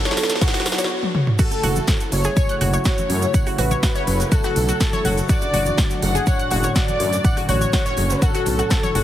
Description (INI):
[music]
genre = progressive house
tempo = 123 BPM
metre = 4/4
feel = straight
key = F# minor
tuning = A4 = 440 Hz
[part]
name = warm velvety synth lead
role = melody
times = 0.0-9.0 s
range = F#4 to F#5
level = -26 LUFS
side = equal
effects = chorus, tape echo
[part]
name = dark studio violin section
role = second line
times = 0.0-9.0 s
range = F#4 to F#5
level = -30 LUFS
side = left 1 dB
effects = sidechain pumping, digital delay
[part]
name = warm analog pad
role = sustained chords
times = 0.0-9.0 s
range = A2 to D5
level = -28 LUFS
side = equal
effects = chorus, sidechain pumping
[part]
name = riser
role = sound effects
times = 0.0-0.9 s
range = none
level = -32 LUFS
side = left 1 dB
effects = none
[part]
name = analog pluck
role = arpeggios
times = 0.1-9.0 s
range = F#4 to F#6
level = -26 LUFS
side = left 2 dB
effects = chorus, sidechain pumping, digital delay
[part]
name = big-room dance drum kit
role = drums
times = 0.1-9.0 s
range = crash cymbal, hi-hat, snare drum, toms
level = -25 LUFS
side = equal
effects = none
[part]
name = jazz brush drum kit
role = drums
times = 0.1-9.0 s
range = hi-hat, snare drum, tambourine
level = -36 LUFS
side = left 1 dB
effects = none
[part]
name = tube shaker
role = percussion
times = 0.1-8.9 s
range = none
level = -34 LUFS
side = right 4 dB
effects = none
[part]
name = electronic kick drum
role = drums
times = 0.4-8.8 s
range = none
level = -19 LUFS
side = equal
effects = none
[part]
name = bongos and congas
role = percussion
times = 1.5-9.0 s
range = none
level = -31 LUFS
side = left 2 dB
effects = sidechain pumping on perc
[part]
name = dark detuned saw bass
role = bass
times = 1.6-9.0 s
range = F#1 to F#2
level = -22 LUFS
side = equal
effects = sidechain pumping
[sound]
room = light reverb, small room ambience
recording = heavily compressed radio sound, multiband compression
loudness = -17 LUFS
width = side -12 dB against mid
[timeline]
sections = 0.0-1.4 A section; 1.4-9.0 B section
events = build-up 0.0-1.4; drum fill 0.0-0.9, 1.0-1.4; riser 0.0-0.9; drop 1.4-9.0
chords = 0.0 Bm; 1.4 F#m7; 5.3 D/F#